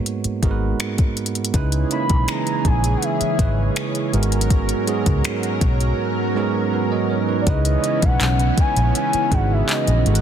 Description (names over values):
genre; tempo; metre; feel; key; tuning
contemporary R&B; 81 BPM; 4/4; straight; C# dorian; A4 = 439 Hz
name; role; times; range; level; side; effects
bell-like tine electric piano; accompaniment; 0.0-10.2 s; G#2 to D#5; -23 LUFS; right 6 dB; none
smooth R&B drum kit; drums; 0.1-10.2 s; finger snaps, handclaps, hi-hat, kick drum; -21 LUFS; left 1 dB; soft clipping on snare
vintage muted fingered electric bass; bass; 0.2-10.2 s; G#1 to C#2; -20 LUFS; left 1 dB; none
lush unison pad; sustained chords; 1.5-10.2 s; E3 to A#4; -25 LUFS; equal; chorus
gliding portamento lead; melody; 1.9-10.2 s; D5 to B5; -24 LUFS; left 2 dB; chorus, tape echo
room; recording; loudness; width
light reverb, digital ambience; dense, heavily limited modern master; -17 LUFS; side -9 dB against mid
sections
0.0-7.5 A section; 7.5-10.2 B section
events
none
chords
0.0 G#m9; 1.5 C#m9; 4.1 G#m9; 7.5 C#m9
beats
0.06 0.80 | 1.54 2.28 3.02 3.76 | 4.50 5.24 5.99 6.72 | 7.47 8.21 8.95 9.69